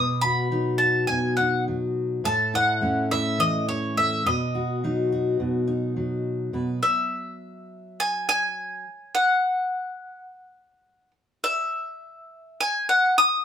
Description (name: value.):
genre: folk.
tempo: 104 BPM.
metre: 4/4.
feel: straight.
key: unclear.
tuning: A4 = 439 Hz.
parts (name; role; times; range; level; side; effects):
bowl-back mandolin; melody; 0.0-13.4 s; C#5 to D#6; -22 LUFS; left 1 dB; none.
fingerpicked steel-string acoustic guitar; accompaniment; 0.0-8.8 s; A2 to B4; -26 LUFS; equal; none.
room: wet studio reverb, RT60 0.6 s.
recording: band playing live in one room.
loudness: -22 LUFS.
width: side -8 dB against mid.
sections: 0.0-6.8 A section; 6.8-13.4 B section.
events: none.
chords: 0.0 B; 2.2 A; 4.2 B; 6.8 N.C..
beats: 0.51 1.08 1.66 | 2.23 2.81 3.38 3.96 | 4.54 5.11 5.68 6.26 | 6.83 7.41 7.98 8.56 | 9.13 9.71 10.28 10.85 | 11.43 12.00 12.58 13.15.